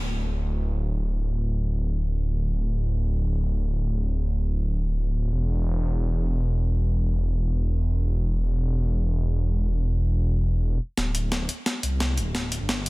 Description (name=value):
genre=liquid drum and bass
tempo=free time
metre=none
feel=none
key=unclear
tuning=A4 = 440 Hz
part: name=swelling detuned saw bass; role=bass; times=0.0-12.9 s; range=D1 to C2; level=-23 LUFS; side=equal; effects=none
part: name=breakbeat sampler-style drum kit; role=drums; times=11.0-12.9 s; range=hi-hat, snare drum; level=-28 LUFS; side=equal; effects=studio ambience
room=digital ambience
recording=dense, heavily limited modern master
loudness=-23 LUFS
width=side -22 dB against mid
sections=0.0-11.0 A section; 11.0-12.9 B section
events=build-up 11.0-12.9; drum fill 11.0-12.9; filter sweep 11.0-12.9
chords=none